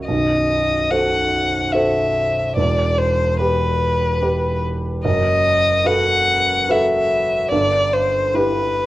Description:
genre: classical, romantic duo for violin and grand piano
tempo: 73 BPM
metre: 3/4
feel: rubato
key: E minor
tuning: A4 = 440 Hz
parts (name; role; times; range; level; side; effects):
- warm concert grand piano; accompaniment; 0.0-8.9 s; B0 to E5; -19 LUFS; right 1 dB; none
- rich violin; melody; 0.1-8.9 s; B4 to F#5; -18 LUFS; left 1 dB; none
room: wet stone room reverb, RT60 1.1 s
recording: worn, warbling old tape, cassette tape, warbly pitch drift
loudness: -16 LUFS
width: side -16 dB against mid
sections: 0.0-8.9 A section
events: none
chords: 0.1 B7b9; 2.6 Em; 5.0 B7/F#; 7.5 Em/G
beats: | 0.08 0.90 1.73 | 2.57 3.39 4.22 | 5.03 5.85 6.68 | 7.52 8.33

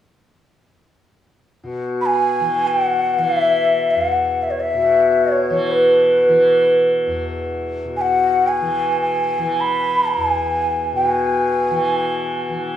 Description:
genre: indian classical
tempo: free time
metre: none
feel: none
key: E raga bhupali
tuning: A4 = 439 Hz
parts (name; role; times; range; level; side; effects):
- tanpura; drone; 1.6-12.8 s; E2 to E3; -23 LUFS; left 2 dB; none
- breathy hollow bansuri; melody; 2.0-12.8 s; B4 to B5; -16 LUFS; equal; none
room: moderate recital hall reverb, RT60 1.4 s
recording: studio reverb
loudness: -15 LUFS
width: side -10 dB against mid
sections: 1.6-12.8 A section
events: none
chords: none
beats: free time

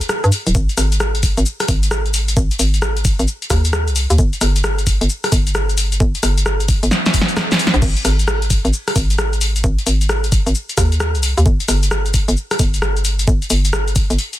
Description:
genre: UK garage, two-step garage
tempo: 132 BPM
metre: 4/4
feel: swing 64% on 16ths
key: unclear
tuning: A4 = 440 Hz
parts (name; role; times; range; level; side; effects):
- punchy analog drum machine; drums; 0.0-14.4 s; crash cymbal, hi-hat, rim click, shaker, snare drum; -19 LUFS; left 1 dB; soft clipping on snare
- hollow knocking FM bass; bass; 0.2-14.2 s; D1 to G2; -17 LUFS; equal; none
- electronic kick drum; drums; 0.5-14.1 s; none; -17 LUFS; equal; none
room: little or no reverb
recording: dense, heavily limited modern master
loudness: -14 LUFS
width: side -14 dB against mid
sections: 0.0-14.4 A section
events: drum fill 6.9-7.8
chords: none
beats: 0.09 | 0.55 1.00 1.46 1.91 | 2.37 2.82 3.27 3.73 | 4.18 4.64 5.09 5.55 | 6.00 6.46 6.91 7.37 | 7.82 8.28 8.73 9.18 | 9.64 10.09 10.55 11.00 | 11.46 11.91 12.37 12.82 | 13.28 13.73 14.18

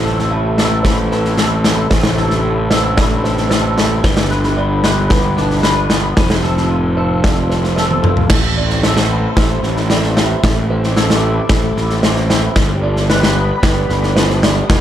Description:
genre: post-rock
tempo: 113 BPM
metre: 4/4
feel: straight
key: A minor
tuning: A4 = 440 Hz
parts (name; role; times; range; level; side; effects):
- chorused pulse-width pad; sustained chords; 0.0-14.8 s; A2 to D6; -24 LUFS; equal; none
- clean electric guitar; arpeggios; 0.0-14.8 s; A2 to B4; -21 LUFS; left 3 dB; ensemble chorus, digital delay
- felt-muted upright piano; arpeggios; 0.0-14.8 s; A4 to E5; -25 LUFS; right 6 dB; digital delay
- fuzz fingered electric bass; bass; 0.0-14.8 s; F1 to A1; -17 LUFS; equal; overdrive
- big rock drum kit; drums; 0.1-14.8 s; crash cymbal, kick drum, snare drum, toms; -15 LUFS; equal; none
room: light reverb, studio reverb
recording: dark, warm production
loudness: -12 LUFS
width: side -11 dB against mid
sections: 0.0-8.3 A section; 8.3-14.8 B section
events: drum fill 7.8-8.3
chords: 0.0 Am; 4.0 G; 6.2 F; 8.3 Am; 12.6 G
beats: 0.31 0.85 1.38 | 1.91 2.44 2.98 3.51 | 4.04 4.58 5.11 5.64 | 6.17 6.71 7.24 7.77 | 8.30 8.84 9.37 9.90 | 10.43 10.96 11.50 12.03 | 12.56 13.10 13.63 14.16 | 14.69

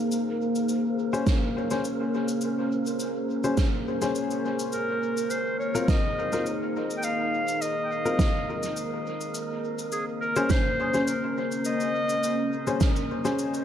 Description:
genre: ambient dub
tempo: 104 BPM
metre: 4/4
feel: swing 54% on 16ths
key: Bb minor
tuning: A4 = 439 Hz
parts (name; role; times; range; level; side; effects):
- deep dark ambient pad; sustained chords; 0.0-13.6 s; Bb3 to F5; -29 LUFS; left 1 dB; chorus, built-in reverb
- wind-like tuned noise texture; texture; 0.0-13.6 s; Bb4; -38 LUFS; right 7 dB; built-in reverb
- cabasa and snare drum; drums; 0.1-13.6 s; none; -33 LUFS; right 3 dB; dub echo
- dark upright piano; stabs; 1.1-13.6 s; C4 to C5; -31 LUFS; left 2 dB; dub echo
- electronic kick drum; drums; 1.3-12.9 s; none; -24 LUFS; equal; overdrive
- warm clarinet; melody; 4.7-12.8 s; Ab4 to G5; -29 LUFS; equal; dub echo
room: light reverb, small room ambience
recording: dark, warm production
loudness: -24 LUFS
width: side -9 dB against mid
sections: 0.0-13.6 A section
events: none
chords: 0.1 Bbm9; 4.7 Ab69; 9.3 Bbm9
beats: | 0.11 0.69 1.27 1.84 | 2.42 3.00 3.58 4.15 | 4.73 5.31 5.88 6.46 | 7.04 7.61 8.19 8.77 | 9.35 9.92 10.50 11.07 | 11.65 12.23 12.81 13.38

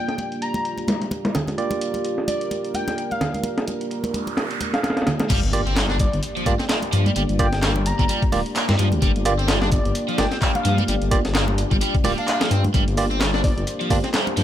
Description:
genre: breakbeat, breaks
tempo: 129 BPM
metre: 4/4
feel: swing 57% on 16ths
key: G minor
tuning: A4 = 442 Hz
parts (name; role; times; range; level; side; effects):
- airy dreamy lead; melody; 0.0-13.6 s; D5 to Bb5; -30 LUFS; left 1 dB; chorus, small speaker sound, ping-pong delay
- dark analog pad; sustained chords; 0.0-14.4 s; Bb3 to D5; -29 LUFS; left 1 dB; chorus, sidechain pumping
- barky tine electric piano; stabs; 0.0-14.0 s; Bb3 to D5; -27 LUFS; right 5 dB; low-pass filter, ping-pong delay
- breakbeat sampler-style drum kit; drums; 0.1-14.4 s; crash cymbal, hi-hat, kick drum, snare drum; -23 LUFS; equal; low-pass filter on hats, low-pass filter on snare, low-pass filter on cymbals, low-pass filter on kick
- punchy analog drum machine; drums; 0.1-14.4 s; handclaps, hi-hat; -31 LUFS; equal; low-pass filter on hats, low-pass filter on snare, low-pass filter on room
- congas; percussion; 0.2-14.3 s; none; -30 LUFS; right 1 dB; none
- noise sweep and impact; sound effects; 3.8-7.2 s; none; -31 LUFS; equal; none
- crunchy overdriven guitar; riff; 5.3-14.4 s; F3 to D4; -27 LUFS; right 1 dB; tube saturation, ping-pong delay
- dark detuned saw bass; bass; 5.3-14.4 s; D1 to G2; -22 LUFS; left 1 dB; none
room: light reverb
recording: none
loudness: -19 LUFS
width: side -11 dB against mid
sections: 0.0-5.3 A section; 5.3-14.4 B section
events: filter sweep on tine electric piano 0.0-5.3; noise sweep 3.8-5.3; drop 5.3-14.4; impact 5.3-7.2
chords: 0.0 Gm7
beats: 0.18 0.65 1.11 | 1.58 2.04 2.51 2.98 | 3.44 3.90 4.37 4.83 | 5.30 5.77 6.23 6.70 | 7.16 7.63 8.09 8.56 | 9.02 9.49 9.95 10.42 | 10.88 11.35 11.81 12.28 | 12.74 13.21 13.67 14.14

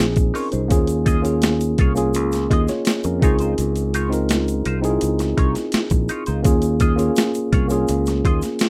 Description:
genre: lush 1970s-style soul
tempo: 84 BPM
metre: 4/4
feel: straight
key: unclear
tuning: A4 = 440 Hz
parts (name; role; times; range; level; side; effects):
- tine electric piano; accompaniment; 0.0-8.7 s; Bb3 to Eb5; -24 LUFS; equal; overdrive
- clean electric guitar; riff; 0.0-8.7 s; Eb4 to Eb5; -31 LUFS; equal; wah, analog chorus
- fingered electric bass; bass; 0.0-8.4 s; Bb1 to F2; -24 LUFS; equal; none
- boom bap sampler-style drum kit; drums; 0.0-8.7 s; hi-hat, kick drum, snare drum; -22 LUFS; equal; none
- egg shaker; percussion; 0.2-8.7 s; none; -39 LUFS; equal; none
room: little or no reverb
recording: rough home demo mix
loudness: -19 LUFS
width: mono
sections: 0.0-8.7 A section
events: none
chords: 0.0 Dbmaj9; 0.7 Eb9sus4; 3.2 Dbmaj9; 6.5 Eb9sus4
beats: | 0.71 1.43 2.14 2.86 | 3.58 4.30 5.02 5.74 | 6.46 7.17 7.89 8.61

